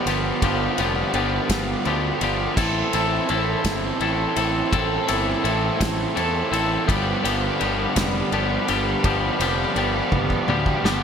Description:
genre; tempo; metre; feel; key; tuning
indie rock; 56 BPM (dotted quarters); 6/8; straight; unclear; A4 = 440 Hz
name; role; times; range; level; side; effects
combo organ; sustained chords; 0.0-11.0 s; G4 to C6; -33 LUFS; equal; none
overdriven electric guitar; riff; 0.0-11.0 s; G2 to A4; -25 LUFS; right 7 dB; analog chorus, digital delay
twangy electric guitar; riff; 0.0-11.0 s; G2 to A4; -24 LUFS; left 8 dB; none
fuzz fingered electric bass; bass; 0.1-11.0 s; F1 to E2; -27 LUFS; equal; overdrive
loose indie drum kit; drums; 0.1-11.0 s; crash cymbal, kick drum, ride cymbal, snare drum, toms; -26 LUFS; equal; gated reverb
room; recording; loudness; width
moderate plate reverb, RT60 2.7 s; bright 1980s-style digital production; -19 LUFS; side -7 dB against mid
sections
0.0-11.0 A section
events
drum fill 10.1-11.0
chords
0.0 G7; 2.6 Am; 6.9 G7

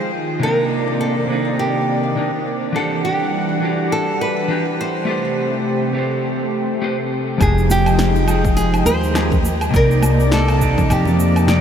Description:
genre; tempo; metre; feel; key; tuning
sunset chillout; 103 BPM; 4/4; swing 57% on 16ths; unclear; A4 = 441 Hz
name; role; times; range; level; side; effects
nylon-string guitar; melody; 0.0-11.6 s; G4 to C5; -22 LUFS; equal; ping-pong delay
lush unison pad; sustained chords; 0.0-11.6 s; C3 to G5; -22 LUFS; equal; chorus
electric guitar at the edge of break-up; accompaniment; 0.4-11.6 s; C3 to F#5; -21 LUFS; equal; auto-pan, ping-pong delay
upright bass; bass; 7.4-11.6 s; F1 to F2; -17 LUFS; equal; none
electronic kick drum; drums; 7.4-10.9 s; none; -19 LUFS; equal; overdrive
electronic woodblock, cabasa and snare drum; drums; 7.4-11.6 s; none; -24 LUFS; equal; overdrive, low-pass filter on perc, low-pass filter on snare, low-pass filter on room
congas; percussion; 7.7-11.3 s; none; -26 LUFS; right 3 dB; none
room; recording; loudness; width
wet huge ambient reverb, RT60 7.7 s; dreamy mix soaked in reverb; -15 LUFS; side -8 dB against mid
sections
0.0-7.4 A section; 7.4-11.6 B section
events
none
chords
0.4 Cm9; 2.7 Em9; 5.1 Am7; 7.4 Fm9; 9.7 Cm9

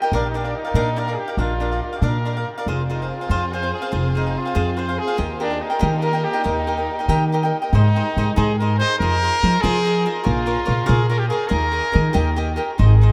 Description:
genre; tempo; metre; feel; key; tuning
mexican folk, mariachi; 95 BPM (dotted quarters); 6/8; rubato; Eb major, Ab major from 7.7 s; A4 = 445 Hz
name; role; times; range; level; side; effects
cavaquinho; accompaniment; 0.0-13.1 s; D4 to Ab5; -27 LUFS; equal; none
upright bass; bass; 0.1-13.1 s; F1 to F3; -22 LUFS; equal; none
clear trumpet; melody; 0.3-13.1 s; D4 to C5; -26 LUFS; equal; none
rich studio violin section; sustained chords; 2.7-7.7 s; Bb3 to Ab4; -34 LUFS; equal; none
room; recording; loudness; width
moderate huge ambient reverb, RT60 7.9 s; in a vast, echoing space; -20 LUFS; mono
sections
0.0-7.7 A section; 7.7-13.1 B section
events
none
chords
0.1 Bb; 2.7 Fm; 5.2 Eb; 7.7 Ab; 9.0 Fm7; 10.3 Bbm; 11.5 Ebsus4; 12.2 Eb

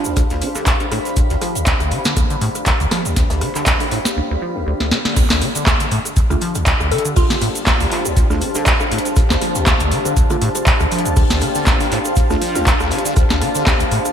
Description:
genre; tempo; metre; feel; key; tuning
acid house; 120 BPM; 4/4; swing 55% on 16ths; D dorian; A4 = 440 Hz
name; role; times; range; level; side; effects
glassy wavetable pluck; melody; 0.0-0.4, 6.9-7.6 s; D4 to A4; -25 LUFS; right 1 dB; chorus, digital delay
liquid acid bass; riff; 0.0-14.0 s; D2 to F3; -21 LUFS; equal; phaser, analog chorus, sidechain pumping
cabasa; percussion; 0.0-14.1 s; none; -28 LUFS; right 5 dB; none
granular cloud pad; texture; 0.0-14.1 s; D4 to B5; -23 LUFS; left 1 dB; built-in reverb, sidechain pumping
booming analog drum machine; drums; 0.1-14.1 s; crash cymbal, handclaps, hi-hat, rim click, snare drum; -20 LUFS; equal; gated reverb
deep reggae drum kit; drums; 0.2-14.0 s; hi-hat, shaker, snare drum; -32 LUFS; left 1 dB; none
electronic kick drum; drums; 0.2-13.8 s; none; -17 LUFS; equal; none
mellow tine electric piano; stabs; 6.3-12.7 s; A3 to F4; -27 LUFS; right 3 dB; wide subtle chorus, ping-pong delay
room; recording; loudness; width
light reverb, small room ambience; bright 1980s-style digital production; -14 LUFS; side -8 dB against mid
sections
0.0-5.2 A section; 5.2-14.1 B section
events
break 4.2-5.2; drum fill 4.8-5.2; band accent 5.0; drop 5.2-14.1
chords
0.0 Dm

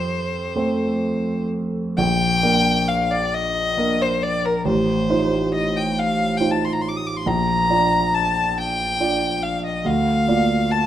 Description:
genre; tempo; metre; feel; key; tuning
classical, romantic duo for violin and grand piano; 46 BPM (dotted quarters); 6/8; uneven beats, rubato; Bb major; A4 = 441 Hz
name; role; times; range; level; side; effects
clear violin; melody; 0.0-10.9 s; Bb4 to Eb6; -21 LUFS; left 1 dB; none
warm grand piano; accompaniment; 0.0-10.9 s; A1 to D5; -21 LUFS; right 1 dB; none
room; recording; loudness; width
moderate recital hall reverb, RT60 1.4 s; dark, warm production; -18 LUFS; side -11 dB against mid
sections
0.0-2.0 A section; 2.0-10.9 B section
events
none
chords
0.0 F; 2.0 Bb; 4.7 F7/A; 7.3 Bb; 9.9 Bb/D

